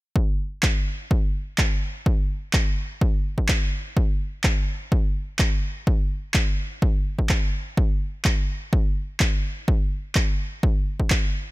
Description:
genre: piano house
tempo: 126 BPM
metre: 4/4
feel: straight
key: none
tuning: none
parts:
  - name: electronic kick drum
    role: drums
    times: 0.2-11.2 s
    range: none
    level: -21 LUFS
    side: equal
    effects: overdrive
  - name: electronic handclaps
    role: drums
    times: 0.6-11.2 s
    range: none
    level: -27 LUFS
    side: right 1 dB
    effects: overdrive
room: digital ambience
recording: none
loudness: -21 LUFS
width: side -19 dB against mid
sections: 0.2-11.5 A section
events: none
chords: none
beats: | 0.16 0.63 1.11 1.58 | 2.06 2.54 3.01 3.49 | 3.97 4.44 4.92 5.39 | 5.87 6.35 6.82 7.30 | 7.78 8.25 8.73 9.20 | 9.68 10.16 10.63 11.11

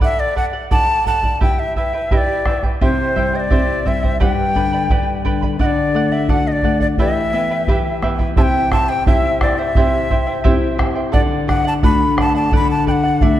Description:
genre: andean folk, Andean ensemble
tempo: 86 BPM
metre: 2/4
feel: straight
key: unclear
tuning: A4 = 440 Hz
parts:
  - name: breathy bright large quena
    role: melody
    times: 0.0-13.4 s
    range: C5 to B5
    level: -19 LUFS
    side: left 2 dB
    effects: none
  - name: charango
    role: accompaniment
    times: 0.0-13.4 s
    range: E4 to B5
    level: -23 LUFS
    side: right 4 dB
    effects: none
  - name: bombo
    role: percussion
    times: 0.0-13.4 s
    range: none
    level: -18 LUFS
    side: right 1 dB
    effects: none
  - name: nylon-string guitar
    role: accompaniment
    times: 2.8-13.4 s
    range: G2 to G4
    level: -20 LUFS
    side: left 4 dB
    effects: none
room: wet concert hall reverb, RT60 2.0 s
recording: dark, warm production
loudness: -14 LUFS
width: side -12 dB against mid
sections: 0.0-8.4 A section; 8.4-13.4 B section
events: none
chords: 0.0 D; 1.4 Em; 2.8 C; 4.2 G; 5.6 D; 7.0 Em; 8.4 C; 11.1 D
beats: | 0.02 0.72 | 1.42 2.12 | 2.82 3.51 | 4.21 4.91 | 5.60 6.30 | 6.99 7.68 | 8.38 9.07 | 9.76 10.46 | 11.15 11.84 | 12.53 13.22

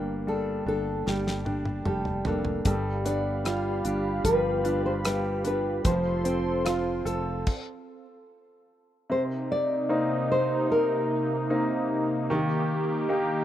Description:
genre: pop ballad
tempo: 75 BPM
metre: 4/4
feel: straight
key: unclear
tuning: A4 = 440 Hz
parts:
  - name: nylon-string guitar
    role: melody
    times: 0.0-13.4 s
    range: G4 to D5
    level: -29 LUFS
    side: left 1 dB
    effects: none
  - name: bright grand piano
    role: accompaniment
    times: 0.0-13.4 s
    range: C3 to A4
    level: -31 LUFS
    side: left 1 dB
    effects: none
  - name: fingerpicked steel-string acoustic guitar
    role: arpeggios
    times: 0.0-8.0 s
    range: G2 to A4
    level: -32 LUFS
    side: right 5 dB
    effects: none
  - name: sustaining fretless electric bass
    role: bass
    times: 0.0-7.4 s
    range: F1 to G1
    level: -33 LUFS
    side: equal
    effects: none
  - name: damped 70s drum kit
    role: drums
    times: 1.1-7.7 s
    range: crash cymbal, hi-hat, kick drum, rim click, snare drum, toms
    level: -29 LUFS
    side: equal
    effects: none
  - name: warm analog pad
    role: sustained chords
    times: 2.7-13.4 s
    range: C3 to C6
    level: -30 LUFS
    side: equal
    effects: lush chorus
room: light reverb, studio reverb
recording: rough home demo mix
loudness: -24 LUFS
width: side -11 dB against mid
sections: 0.0-9.1 A section; 9.1-13.4 B section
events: drum fill 1.1-2.7; stop 7.5-9.1; grand piano fill 13.1-13.4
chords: 0.0 Gmadd9; 2.7 G7; 5.8 F; 9.1 Cm7; 12.3 Eb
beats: 0.27 1.07 1.86 | 2.66 3.46 4.25 5.05 | 5.85 6.66 7.47 8.29 | 9.10 9.90 10.70 11.50 | 12.30 13.09

